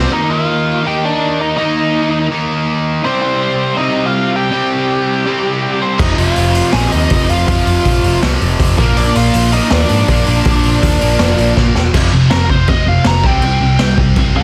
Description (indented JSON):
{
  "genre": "punk rock",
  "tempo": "162 BPM",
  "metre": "4/4",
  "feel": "straight",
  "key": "unclear",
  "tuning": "A4 = 440 Hz",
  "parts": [
    { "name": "biting lead guitar", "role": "melody", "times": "0.0-14.4 s", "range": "Bb3 to Bb5", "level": "-19 LUFS", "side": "equal", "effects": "overdrive" },
    { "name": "crunchy overdriven guitar", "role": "riff", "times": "0.0-14.4 s", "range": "F2 to Eb4", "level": "-20 LUFS", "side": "equal", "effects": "none" },
    { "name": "distorted electric guitar", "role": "riff", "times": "0.0-14.4 s", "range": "F2 to Eb4", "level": "-23 LUFS", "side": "equal", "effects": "distortion" },
    { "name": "heavy high-gain guitar", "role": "riff", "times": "0.0-0.1, 6.0-14.4 s", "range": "F2 to C4", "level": "-25 LUFS", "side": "equal", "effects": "distortion" },
    { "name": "overdriven picked electric bass", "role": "bass", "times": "0.0, 6.0-14.4 s", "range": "E1 to Ab2", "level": "-18 LUFS", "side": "equal", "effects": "none" },
    { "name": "raw garage drum kit", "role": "drums", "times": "6.0-14.2 s", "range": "crash cymbal, hi-hat, kick drum, snare drum", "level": "-18 LUFS", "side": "equal", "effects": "none" }
  ],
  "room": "little or no reverb",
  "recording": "dense, heavily limited modern master",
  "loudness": "-13 LUFS",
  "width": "mono",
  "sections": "0.1-11.9 A section; 11.9-14.4 B section",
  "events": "half time 0.1-11.9; drum fill 11.6-11.9; lead electric guitar solo 11.9-14.4",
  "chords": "0.1 Eb5; 3.0 C5; 6.0 F5; 8.8 Bb; 11.9 F5; 13.2 C5"
}